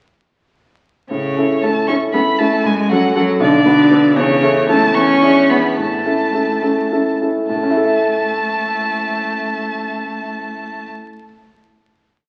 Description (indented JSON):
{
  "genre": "quick classical-period movement for piano trio",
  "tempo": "69-80 BPM (dotted quarters)",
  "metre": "6/8",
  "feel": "rubato",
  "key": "A major",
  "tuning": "A4 = 439 Hz",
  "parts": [
    { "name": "rich violin", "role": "melody", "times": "1.1-10.9 s", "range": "C#5 to C#6", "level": "-23 LUFS", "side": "equal", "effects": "none" },
    { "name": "rich cello", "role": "second line", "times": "1.1-10.9 s", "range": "C#3 to C#4", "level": "-20 LUFS", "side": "equal", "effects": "none" },
    { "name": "warm grand piano", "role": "accompaniment", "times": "1.1-11.2 s", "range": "B1 to E5", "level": "-20 LUFS", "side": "equal", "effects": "none" }
  ],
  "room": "wet recital hall reverb, RT60 1.5 s",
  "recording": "very old 78 rpm record, vinyl crackle",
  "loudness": "-16 LUFS",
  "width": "mono",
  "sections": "1.1-7.5 A section; 7.5-10.8 final chord",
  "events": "slowing down 3.4-7.5",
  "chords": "1.1 A; 2.6 F#m; 3.4 Bm; 4.2 A/E; 5.0 E7; 5.8 A"
}